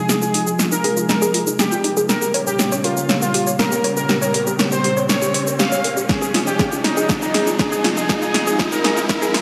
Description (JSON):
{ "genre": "melodic techno", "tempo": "120 BPM", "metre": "4/4", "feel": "straight", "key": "F minor", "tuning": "A4 = 444 Hz", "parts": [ { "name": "fat analog lead", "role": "melody", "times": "0.0-9.4 s", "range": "Eb4 to F5", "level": "-25 LUFS", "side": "equal", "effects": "sidechain pumping, diffuse ambient delay" }, { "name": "lush unison pad", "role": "sustained chords", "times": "0.0-9.4 s", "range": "Bb2 to G4", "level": "-28 LUFS", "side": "equal", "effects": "chorus, phaser, sidechain pumping" }, { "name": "analog pluck", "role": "arpeggios", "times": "0.0-9.4 s", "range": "Eb4 to Db5", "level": "-26 LUFS", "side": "equal", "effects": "chorus, sidechain pumping, tape echo" }, { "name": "riser", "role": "sound effects", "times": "3.9-9.4 s", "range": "none", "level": "-31 LUFS", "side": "equal", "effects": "none" }, { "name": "round analog bass", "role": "bass", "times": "0.1-9.3 s", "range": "none", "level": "barely audible", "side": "none", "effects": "none" }, { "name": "deep house drum kit", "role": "drums", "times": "0.1-9.4 s", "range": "hi-hat, shaker, snare drum", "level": "-22 LUFS", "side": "equal", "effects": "overdrive, sidechain pumping on perc, sidechain pumping on hats" }, { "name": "electronic kick drum", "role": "drums", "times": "6.1-9.2 s", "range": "none", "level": "-25 LUFS", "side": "equal", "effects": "overdrive" } ], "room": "wet lush hall reverb, RT60 2.4 s", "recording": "dreamy mix soaked in reverb, high-pass filter", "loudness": "-18 LUFS", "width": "mono", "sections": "0.0-9.4 A section", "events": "build-up 0.0-9.4; drum fill 0.0-9.4; filter sweep on synth arpeggio sound 0.0-9.4; filter sweep on analog synth pad 0.0-9.4; riser 3.9-9.4", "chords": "0.0 Fm7; 2.1 Gdim; 6.1 Fm7", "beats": "| 0.09 0.59 1.09 1.59 | 2.09 2.59 3.09 3.59 | 4.09 4.59 5.09 5.59 | 6.09 6.59 7.09 7.59 | 8.09 8.59 9.09" }